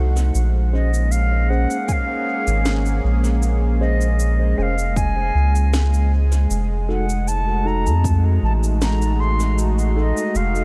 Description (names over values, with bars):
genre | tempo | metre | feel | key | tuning
ambient dub | 78 BPM | 4/4 | straight | Bb minor | A4 = 440 Hz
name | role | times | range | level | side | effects
warm analog pad | sustained chords | 0.0-10.6 s | F3 to C5 | -29 LUFS | equal | chorus
soft dub sub bass | bass | 0.0-10.6 s | F1 to F2 | -20 LUFS | equal | none
electronic shaker and snare drum | drums | 0.2-10.6 s | none | -32 LUFS | equal | studio reverb, dub echo
mellow wooden flute | melody | 0.7-10.6 s | Eb5 to C6 | -28 LUFS | equal | vintage 12-bit sampler grit, dub echo
mellow tine electric piano | stabs | 0.7-10.2 s | Db4 to C5 | -33 LUFS | equal | dub echo
electronic kick drum | drums | 1.9-8.2 s | none | -25 LUFS | equal | studio reverb
room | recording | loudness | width
digital ambience | none | -19 LUFS | mono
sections
0.0-10.6 A section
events
none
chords
0.3 Bbm9; 6.5 F7b9